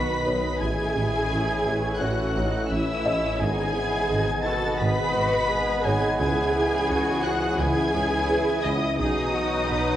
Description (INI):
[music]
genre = cinematic, hybrid orchestral and electronic film score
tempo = 86 BPM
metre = 4/4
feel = straight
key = G# phrygian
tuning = A4 = 441 Hz
[part]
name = rich symphonic violin section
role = melody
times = 0.0-10.0 s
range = D#6 to B6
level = -31 LUFS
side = left 2 dB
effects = none
[part]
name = rich symphonic violin section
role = second line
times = 0.0-10.0 s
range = D#5 to B5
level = -30 LUFS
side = left 1 dB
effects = none
[part]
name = rich symphonic viola section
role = accompaniment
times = 0.0-10.0 s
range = D#4 to D#5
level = -28 LUFS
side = right 1 dB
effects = none
[part]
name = analog drone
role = sustained chords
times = 0.0-10.0 s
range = B2 to D#5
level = -34 LUFS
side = left 1 dB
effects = chorus
[part]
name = dark French horn section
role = sustained chords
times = 0.0-10.0 s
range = F#3 to D#5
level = -33 LUFS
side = left 3 dB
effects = none
[part]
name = warm trombone section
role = sustained chords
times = 0.0-10.0 s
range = G#2 to B3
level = -33 LUFS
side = right 2 dB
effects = none
[part]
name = mellow tuba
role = bass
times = 0.0-9.8 s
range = G#1 to C#2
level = -33 LUFS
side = right 2 dB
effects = none
[part]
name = rich symphonic cello section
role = bass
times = 0.0-10.0 s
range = C#4 to B4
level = -32 LUFS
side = right 1 dB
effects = none
[part]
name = wide detuned saw bass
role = bass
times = 0.0-10.0 s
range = G#1 to C#2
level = -33 LUFS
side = equal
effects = chorus
[part]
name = felt-muted upright piano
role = texture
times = 0.0-10.0 s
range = B4 to D#5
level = -35 LUFS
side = left 2 dB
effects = none
[part]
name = rich symphonic double bass section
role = bass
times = 0.3-9.8 s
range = G#1 to C#2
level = -32 LUFS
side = right 2 dB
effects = none
[sound]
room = wet scoring stage reverb, RT60 2.0 s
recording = worn, warbling old tape, cassette tape, warbly pitch drift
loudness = -22 LUFS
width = side -12 dB against mid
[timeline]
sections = 0.0-10.0 A section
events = none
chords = 0.0 B; 0.6 A; 3.4 G#m; 6.2 C#m; 9.0 B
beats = | 0.61 1.31 2.01 2.71 | 3.40 4.10 4.80 5.50 | 6.20 6.89 7.59 8.29 | 8.99 9.68